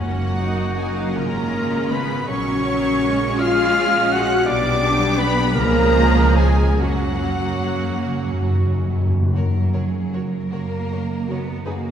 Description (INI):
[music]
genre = classical, slow romantic movement for symphony orchestra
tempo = 46-58 BPM (dotted quarters)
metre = 6/8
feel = rubato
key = F# major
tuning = A4 = 441 Hz
[part]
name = rich symphonic violin section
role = melody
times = 0.0-11.9 s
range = F#4 to F#6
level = -28 LUFS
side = left 2 dB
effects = none
[part]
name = clear oboe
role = second line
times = 0.0-8.9 s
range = F#4 to F#5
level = -29 LUFS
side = right 1 dB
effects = none
[part]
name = clear studio violin section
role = second line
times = 0.0-11.7 s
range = C#4 to C#5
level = -31 LUFS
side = left 1 dB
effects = none
[part]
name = concert flute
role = second line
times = 0.0-8.9 s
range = F#5 to F#6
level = -28 LUFS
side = left 1 dB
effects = none
[part]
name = mellow clarinet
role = second line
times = 0.0-8.9 s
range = F#4 to F#5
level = -27 LUFS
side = right 1 dB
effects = none
[part]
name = clear symphonic viola section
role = accompaniment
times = 0.0-11.7 s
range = E#3 to G#4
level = -27 LUFS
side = right 2 dB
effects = none
[part]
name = dark French horn section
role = sustained chords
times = 0.0-8.9 s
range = F#3 to F#4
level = -25 LUFS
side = left 3 dB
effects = none
[part]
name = concert harp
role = arpeggios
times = 0.0-11.9 s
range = F#2 to G4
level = -28 LUFS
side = left 2 dB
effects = none
[part]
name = rich symphonic cello section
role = bass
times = 0.0-11.9 s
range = F#3 to F#4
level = -26 LUFS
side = right 3 dB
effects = none
[part]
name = rich symphonic double bass section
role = bass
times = 0.0-11.9 s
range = F#1 to F#2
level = -24 LUFS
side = right 1 dB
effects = none
[part]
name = timpani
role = percussion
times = 0.0-1.1, 6.8-10.5 s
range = F#2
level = -23 LUFS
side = equal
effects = none
[sound]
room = wet concert hall reverb, RT60 2.2 s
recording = heard from further back in the room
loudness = -17 LUFS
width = side -8 dB against mid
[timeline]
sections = 0.0-9.3 A section; 9.3-11.9 B section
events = timpani fill 6.8-9.3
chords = 0.0 F#; 2.3 F#/A#; 4.5 G/B; 5.6 C#7; 6.8 F#